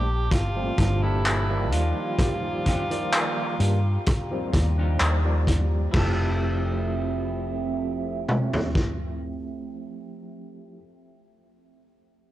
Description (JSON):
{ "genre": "vaporwave", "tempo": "64 BPM", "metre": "4/4", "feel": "swing 53% on 16ths", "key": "F major", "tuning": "A4 = 444 Hz", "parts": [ { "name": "clear tenor saxophone", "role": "melody", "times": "0.0-5.0 s", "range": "E4 to G4", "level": "-33 LUFS", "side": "right 1 dB", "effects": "tape echo" }, { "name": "overdriven tine electric piano", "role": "accompaniment", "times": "0.0-10.8 s", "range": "Bb2 to D5", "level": "-31 LUFS", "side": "right 1 dB", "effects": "fast tremolo, lush chorus, analog delay" }, { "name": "warbly tape-like pad", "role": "sustained chords", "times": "0.0-10.5 s", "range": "F3 to D6", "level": "-35 LUFS", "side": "right 4 dB", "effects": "chorus, built-in reverb" }, { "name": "hollow-body short-scale fingered electric bass", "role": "bass", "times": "0.0-8.7 s", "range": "F1 to G2", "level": "-24 LUFS", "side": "equal", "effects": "tube saturation" }, { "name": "raw garage drum kit", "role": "drums", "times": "0.3-9.0 s", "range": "kick drum, toms", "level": "-25 LUFS", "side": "equal", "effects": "gated reverb" }, { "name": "raw garage drum kit", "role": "drums", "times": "0.3-6.1 s", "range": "crash cymbal, handclaps, hi-hat", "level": "-28 LUFS", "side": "equal", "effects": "gated reverb" }, { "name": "semi-hollow electric guitar", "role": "riff", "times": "0.8-10.8 s", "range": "Bb3 to A4", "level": "-37 LUFS", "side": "left 1 dB", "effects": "lush chorus, analog delay" } ], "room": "little or no reverb", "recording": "none", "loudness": "-22 LUFS", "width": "side -14 dB against mid", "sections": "0.0-5.9 A section; 5.9-9.7 B section", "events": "none", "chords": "0.0 Gm9; 1.7 Ebmaj9; 5.9 Fmaj9" }